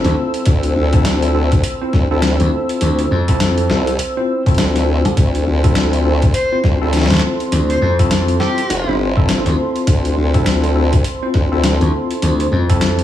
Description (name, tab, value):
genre	glitch hop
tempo	102 BPM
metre	4/4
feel	swing 60% on 16ths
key	D minor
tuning	A4 = 440 Hz
part	dark analog pad	sustained chords	0.0-13.0 s	C5 to E6	-26 LUFS	equal	chorus, sidechain pumping
part	barky tine electric piano	stabs	0.0-13.0 s	C4 to C5	-20 LUFS	equal	medium stereo tremolo, sidechain pumping, digital delay
part	formant-sweep wobble bass	bass	0.0-11.8 s	F1 to D2	-16 LUFS	left 1 dB	chorus, overdrive
part	slap bass	bass	0.0-13.0 s	C2 to F2	-16 LUFS	left 1 dB	none
part	boom bap sampler-style drum kit	drums	0.0-13.0 s	hi-hat, snare drum	-21 LUFS	left 2 dB	studio reverb
part	electronic kick drum	drums	0.5-12.8 s	none	-15 LUFS	equal	studio reverb
part	overdriven harmonica	melody	6.3-9.0 s	G4 to C5	-22 LUFS	left 1 dB	digital delay
room	light reverb, digital ambience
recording	small room ambience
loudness	-13 LUFS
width	side -11 dB against mid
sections	0.0-13.0 A section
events	none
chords	0.0 Dm9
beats	| 0.46 1.05 1.64 2.23 | 2.81 3.40 3.99 4.58 | 5.17 5.76 6.34 6.93 | 7.52 8.11 8.70 9.29 | 9.87 10.46 11.05 11.64 | 12.23 12.81